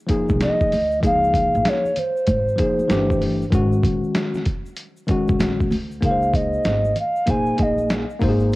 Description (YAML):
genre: hip hop, jazz-hop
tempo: 96 BPM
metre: 4/4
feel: swing 64% on 16ths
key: Db major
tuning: A4 = 438 Hz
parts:
  - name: tine electric piano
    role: accompaniment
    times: 0.1-8.6 s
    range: Eb3 to Eb5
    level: -22 LUFS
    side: left 1 dB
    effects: overdrive, cassette tape
  - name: dusty soul sampler-style drum kit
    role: drums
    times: 0.1-8.6 s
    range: hi-hat, kick drum, snare drum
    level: -23 LUFS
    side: equal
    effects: overdrive, cassette tape
  - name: tube shaker and congas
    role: percussion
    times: 0.1-8.6 s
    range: none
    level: -35 LUFS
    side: right 2 dB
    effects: none
  - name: upright bass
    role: bass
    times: 0.3-8.6 s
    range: G1 to D2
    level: -24 LUFS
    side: equal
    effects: none
  - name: mellow alto ocarina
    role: melody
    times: 0.4-7.9 s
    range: C5 to Ab5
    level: -21 LUFS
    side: equal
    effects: cassette tape, analog delay
room: small room reverb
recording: home recording on cassette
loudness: -17 LUFS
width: side -19 dB against mid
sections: 0.0-6.0 A section; 6.0-8.6 B section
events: ocarina solo 6.0-8.6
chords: 0.0 Fm7; 1.0 Db6; 2.9 G5; 3.5 Ab9sus4; 6.0 Dbsus2; 7.3 Bb9sus4